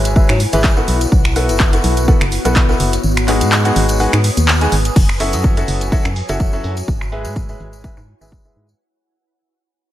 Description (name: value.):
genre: piano house.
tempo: 125 BPM.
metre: 4/4.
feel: swing 55% on 16ths.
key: unclear.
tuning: A4 = 440 Hz.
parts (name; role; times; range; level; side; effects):
bright concert grand piano; riff; 0.0-8.6 s; F#3 to G#5; -20 LUFS; left 1 dB; sidechain pumping, low-pass filter, tape echo.
organ-like FM bass; bass; 0.0-8.7 s; F#1 to G#2; -18 LUFS; equal; sidechain pumping.
tambourine; percussion; 0.0-8.8 s; none; -30 LUFS; left 2 dB; none.
ethereal airy pad; texture; 0.0-8.8 s; B3 to D#6; -24 LUFS; left 2 dB; ensemble chorus, built-in reverb, sidechain pumping.
house drum kit; drums; 0.1-8.8 s; crash cymbal, finger snaps, handclaps, hi-hat; -20 LUFS; equal; overdrive, low-pass filter on snare, low-pass filter on hats, low-pass filter on cymbals, low-pass filter on room.
electronic kick drum; drums; 0.2-8.4 s; none; -14 LUFS; equal; overdrive.
breathy tenor saxophone; melody; 0.3-0.7 s; E3 to F#3; -25 LUFS; left 1 dB; tape echo.
room: light reverb, digital ambience.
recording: lossy compression artefacts.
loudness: -12 LUFS.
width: side -13 dB against mid.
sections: 0.0-5.0 A section; 5.0-8.8 B section.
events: kick drops out 3.0-5.0; fade-out 5.0-8.8; filter sweep on grand piano 5.0-8.8.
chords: 0.0 E/G#; 0.9 B7sus4; 3.0 G#m7; 5.0 F#m7; 6.9 E/G#.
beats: 0.16 0.64 | 1.12 1.60 2.08 2.56 | 3.04 3.52 4.00 4.48 | 4.96 5.44 5.92 6.40 | 6.88 7.36 7.84 8.32.